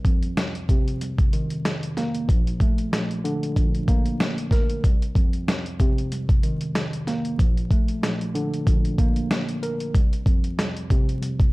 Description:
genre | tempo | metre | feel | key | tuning
hip hop, boom-bap hip-hop | 94 BPM | 4/4 | swing 54% on 16ths | unclear | A4 = 440 Hz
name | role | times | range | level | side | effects
mellow tine electric piano | accompaniment | 0.0-11.5 s | Bb1 to Bb4 | -26 LUFS | equal | medium stereo tremolo, cassette tape, high-pass filter, low-pass filter
dusty soul sampler-style drum kit | drums | 0.0-11.5 s | hi-hat, kick drum, snare drum | -21 LUFS | equal | none
room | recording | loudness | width
little or no reverb | dark, warm production, vinyl crackle | -20 LUFS | side -22 dB against mid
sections
0.0-11.5 A section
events
none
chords
0.0 Cm7; 2.3 Bbmaj7; 4.8 Cm7; 7.4 Bbmaj7; 9.9 N.C.

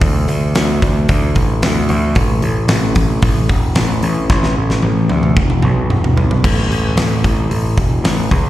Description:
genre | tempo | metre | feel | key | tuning
blues rock power trio and southern rock | 112 BPM | 4/4 | straight | A major | A4 = 440 Hz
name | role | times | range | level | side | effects
overdriven picked electric bass | bass | 0.0-8.5 s | E1 to D2 | -15 LUFS | equal | none
huge arena drum kit | drums | 0.0-8.4 s | crash cymbal, hi-hat, kick drum, snare drum, toms | -16 LUFS | equal | none
room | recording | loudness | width
little or no reverb | live gig heard through the venue's PA, recital hall reverb | -12 LUFS | side -14 dB against mid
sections
0.0-6.4 A section; 6.4-8.5 B section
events
drum fill 4.3-6.4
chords
none

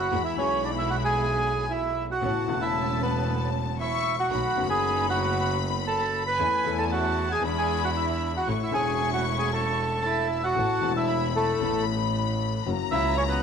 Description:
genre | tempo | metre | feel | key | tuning
tango | 115 BPM | 4/4 | rubato | A major | A4 = 441 Hz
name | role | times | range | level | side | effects
bandoneon | melody | 0.0-13.4 s | A3 to B5 | -26 LUFS | right 2 dB | slapback echo
clear studio violin section | second line | 0.0-13.4 s | G#5 to C#6 | -32 LUFS | left 12 dB | none
warm concert grand piano | accompaniment | 0.0-13.4 s | E1 to C#5 | -32 LUFS | left 11 dB | none
warm studio string section | stabs | 0.0-10.5 s | G#3 to E4 | -36 LUFS | right 12 dB | none
warm double bass | bass | 0.0-13.4 s | E1 to E2 | -30 LUFS | right 2 dB | none
room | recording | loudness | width
light reverb, small room ambience | 1960s-style stereo with parts hard left and right | -23 LUFS | side -7 dB against mid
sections
0.0-10.6 A section; 10.6-13.4 A section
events
none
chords
0.1 E; 2.2 Aadd9; 4.3 B7; 6.4 A/E; 7.4 E7; 8.5 A; 10.6 Asus2; 12.7 F#7

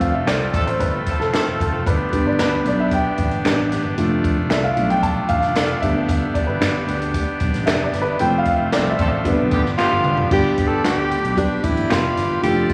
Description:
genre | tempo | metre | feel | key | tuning
uptempo 1960s-style soul | 114 BPM | 4/4 | straight | G mixolydian | A4 = 440 Hz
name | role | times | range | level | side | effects
warm upright piano | accompaniment | 0.0-12.7 s | D3 to A5 | -24 LUFS | equal | none
pipe organ, trumpet | sustained chords | 0.0-12.7 s | G3 to B5 | -28 LUFS | equal | none
compact cocktail drum kit | drums | 0.0-12.7 s | crash cymbal, hi-hat, kick drum, snare drum, toms | -26 LUFS | equal | none
fingered electric bass | bass | 0.1-12.6 s | E1 to D2 | -28 LUFS | equal | none
electric guitar through a small old amp | stabs | 0.3-12.0 s | B3 to D5 | -33 LUFS | equal | none
finger snaps | percussion | 0.3-12.0 s | none | -34 LUFS | equal | none
clear horn section | second line | 0.5-1.8, 9.0-10.3 s | D3 to A4 | -32 LUFS | equal | none
warm tenor saxophone | melody | 9.8-12.7 s | D4 to A4 | -22 LUFS | equal | none
room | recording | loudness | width
wet church reverb, RT60 3.5 s | vinyl crackle | -19 LUFS | mono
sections
0.0-10.3 A section; 10.3-12.7 B section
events
band accent 0.0-1.9, 8.2-10.3; upright piano solo 0.0-10.3; drum fill 9.8-10.3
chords
0.0 F; 1.9 G; 4.0 Dm/F; 5.8 G; 8.2 F; 9.3 G

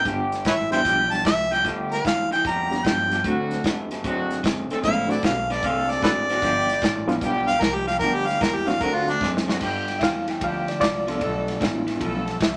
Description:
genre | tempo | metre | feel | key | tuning
electric blues shuffle | 151 BPM | 4/4 | swing 67% on 8ths | G mixolydian | A4 = 438 Hz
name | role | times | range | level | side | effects
warm harmonica | melody | 0.0-9.3 s | D4 to Bb5 | -24 LUFS | equal | none
electric guitar through a small old amp | riff | 0.0-12.6 s | G2 to C4 | -31 LUFS | equal | none
warm horn section | stabs | 0.0-12.4 s | E3 to A4 | -32 LUFS | equal | none
upright bass | bass | 0.0-12.6 s | F#1 to G2 | -37 LUFS | equal | none
reed electric piano | accompaniment | 0.1-12.5 s | F3 to F5 | -30 LUFS | equal | tremolo
natural country drum kit | drums | 0.1-12.5 s | crash cymbal, hi-hat, kick drum, ride cymbal, snare drum | -29 LUFS | equal | none
room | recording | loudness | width
moderate club reverb, RT60 0.7 s | none | -23 LUFS | mono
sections
0.0-9.6 A section; 9.6-12.6 A section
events
harmonica solo 0.0-9.6; drum fill 9.2-9.6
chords
0.1 G7; 3.2 D7; 6.4 G7; 8.8 D7; 9.6 G7

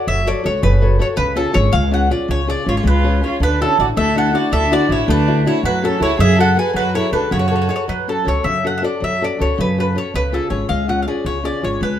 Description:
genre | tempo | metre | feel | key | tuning
italian folk, Italian serenade | 107 BPM (dotted quarters) | 6/8 | rubato | F# minor | A4 = 440 Hz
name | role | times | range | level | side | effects
mandolin | melody | 0.0-12.0 s | A4 to G#5 | -20 LUFS | equal | none
nylon-string guitar | accompaniment | 0.0-12.0 s | C#3 to C#5 | -20 LUFS | left 4 dB | none
upright bass | bass | 0.1-12.0 s | F#1 to F#2 | -19 LUFS | right 1 dB | none
warm violin | second line | 2.7-7.8 s | C#4 to B4 | -22 LUFS | right 5 dB | none
room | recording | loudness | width
moderate studio reverb, RT60 0.9 s | band playing live in one room | -14 LUFS | side -10 dB against mid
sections
0.0-7.9 A section; 7.9-12.0 A section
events
none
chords
0.0 F#m; 1.2 C#; 3.4 Dadd9; 5.6 F#madd9; 7.9 F#m; 10.1 C#

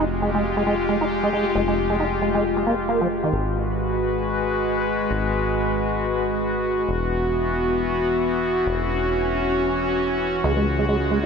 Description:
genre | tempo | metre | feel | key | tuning
IDM | 135 BPM | 4/4 | swing 56% on 16ths | G# minor | A4 = 440 Hz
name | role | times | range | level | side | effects
warbly tape-like pad | sustained chords | 0.0-11.3 s | C#3 to B4 | -22 LUFS | left 1 dB | chorus, built-in reverb
deep acid bass | arpeggios | 0.0-3.3, 10.4-11.3 s | D#3 to D#4 | -24 LUFS | right 2 dB | ensemble chorus, ping-pong delay
deep acid bass | bass | 0.0-11.3 s | E1 to C#2 | -28 LUFS | equal | none
room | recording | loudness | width
moderate huge ambient reverb, RT60 4.4 s | none | -20 LUFS | side -6 dB against mid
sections
0.0-3.3 A section; 3.3-11.3 B section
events
none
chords
0.0 Fmadd9; 3.3 G#m7; 6.9 Esus2; 10.4 C#sus4

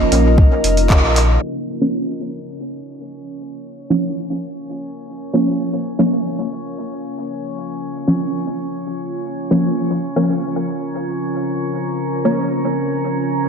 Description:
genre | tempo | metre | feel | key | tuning
dub techno | 115 BPM | 4/4 | straight | Bb minor | A4 = 441 Hz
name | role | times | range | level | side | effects
deep dark ambient pad | sustained chords | 0.0-13.5 s | Db4 to Bb5 | -23 LUFS | equal | chorus, built-in reverb, sidechain pumping
filtered dub chord stab | stabs | 0.0-13.5 s | F3 to Db4 | -19 LUFS | equal | chorus, phaser, sidechain pumping, dub echo
warm sub bass | bass | 0.0-1.4 s | F1 to Bb1 | -16 LUFS | equal | sidechain pumping
drifting glass-harmonics texture | texture | 0.0-13.5 s | Db4 to Bb4 | -28 LUFS | right 2 dB | chorus, built-in reverb, sidechain pumping
soft vintage rhythm box | drums | 0.1-1.3 s | handclaps, hi-hat | -20 LUFS | equal | low-pass filter on hats, low-pass filter on snare, dub echo
electronic kick drum | drums | 0.4-1.0 s | none | -13 LUFS | equal | none
room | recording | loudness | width
wet lush hall reverb, RT60 1.8 s | dreamy mix soaked in reverb, low-pass filter | -17 LUFS | side -6 dB against mid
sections
0.0-1.4 A section; 1.4-13.5 B section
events
band accent 0.9; filter sweep on ambient pad 1.4-13.5; filter sweep 1.4-13.5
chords
0.0 Bbm

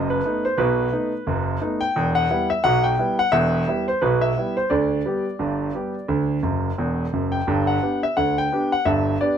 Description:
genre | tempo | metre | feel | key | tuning
ragtime piano | 87 BPM | 2/4 | swing 58% on 16ths | G major | A4 = 437 Hz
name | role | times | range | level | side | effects
clear concert grand piano | solo | 0.0-9.4 s | E1 to G5 | -19 LUFS | equal | none
room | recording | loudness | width
little or no reverb | minimal, uncompressed stereo recording | -19 LUFS | side -8 dB against mid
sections
0.0-9.4 A section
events
grand piano fill 6.4-7.5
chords
0.0 B7; 2.0 Em; 4.7 G/D; 6.1 D; 7.5 G

